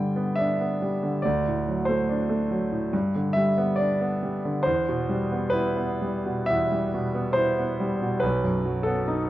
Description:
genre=classical, romantic nocturne for solo piano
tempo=59-73 BPM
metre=4/4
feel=rubato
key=G major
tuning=A4 = 440 Hz
part: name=clear concert grand piano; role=solo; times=0.0-9.3 s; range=B1 to G5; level=-23 LUFS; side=equal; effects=none
room=moderate recital hall reverb, RT60 1.5 s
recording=worn, warbling old tape, cassette tape, warbly pitch drift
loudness=-23 LUFS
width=side -14 dB against mid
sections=0.0-9.3 A section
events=none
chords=0.0 G; 1.2 D7; 2.9 G; 4.6 Em; 8.2 B7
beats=0.38 | 1.25 2.08 2.93 3.78 | 4.65 5.52 6.48 7.37 | 8.23 9.07

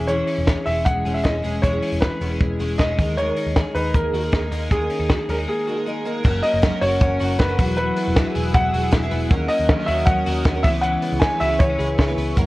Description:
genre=jangly indie pop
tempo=157 BPM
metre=4/4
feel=straight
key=unclear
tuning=A4 = 440 Hz
part: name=felt-muted upright piano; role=melody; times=0.0-12.1 s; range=G#4 to G#5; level=-23 LUFS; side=equal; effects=none
part: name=picked twelve-string acoustic guitar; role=accompaniment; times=0.0-12.5 s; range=C#3 to B4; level=-28 LUFS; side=right 3 dB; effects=analog chorus
part: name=twelve-string electric guitar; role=arpeggios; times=0.0-12.5 s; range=D#3 to G#4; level=-27 LUFS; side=left 3 dB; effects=none
part: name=vintage muted picked electric bass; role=bass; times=0.0-12.5 s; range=E1 to D#2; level=-25 LUFS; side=equal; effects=none
part: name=compact cocktail drum kit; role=drums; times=0.1-12.5 s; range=crash cymbal, hi-hat, kick drum, snare drum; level=-21 LUFS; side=equal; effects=none
part: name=lush unison pad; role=sustained chords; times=6.6-12.5 s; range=G#4 to E6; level=-34 LUFS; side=equal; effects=chorus
room=light reverb, studio reverb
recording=worn, warbling old tape, cassette tape, warbly pitch drift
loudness=-18 LUFS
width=side -19 dB against mid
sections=0.0-6.2 A section; 6.2-12.5 B section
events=break 5.5-6.2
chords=0.0 C#m/E; 3.0 D#sus4; 6.2 F#; 7.6 Eadd9; 9.3 D#m7; 10.6 C#m7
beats=| 0.09 0.48 0.86 1.25 | 1.64 2.02 2.40 2.79 | 3.17 3.56 3.94 4.33 | 4.71 5.10 5.48 5.87 | 6.25 6.63 7.01 7.40 | 7.78 8.16 8.54 8.93 | 9.31 9.69 10.07 10.45 | 10.84 11.22 11.60 11.98 | 12.36

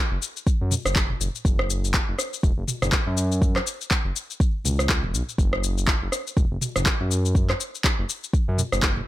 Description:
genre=afro house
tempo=122 BPM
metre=4/4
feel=swing 58% on 16ths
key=unclear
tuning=A4 = 441 Hz
part: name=smooth synth bass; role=bass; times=0.1-9.0 s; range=E1 to F#2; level=-25 LUFS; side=equal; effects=sidechain pumping
part: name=afro-pop drum kit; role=drums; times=0.2-9.1 s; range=handclaps, rim click, shaker, toms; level=-25 LUFS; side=left 1 dB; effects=overdrive
part: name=electronic kick drum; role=drums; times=0.5-8.9 s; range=none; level=-22 LUFS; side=equal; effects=none
room=little or no reverb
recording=none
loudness=-21 LUFS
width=side -15 dB against mid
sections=0.0-9.1 A section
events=none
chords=none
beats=0.47 0.96 | 1.45 1.94 2.43 2.93 | 3.42 3.91 4.40 4.89 | 5.38 5.88 6.37 6.86 | 7.35 7.84 8.34 8.83

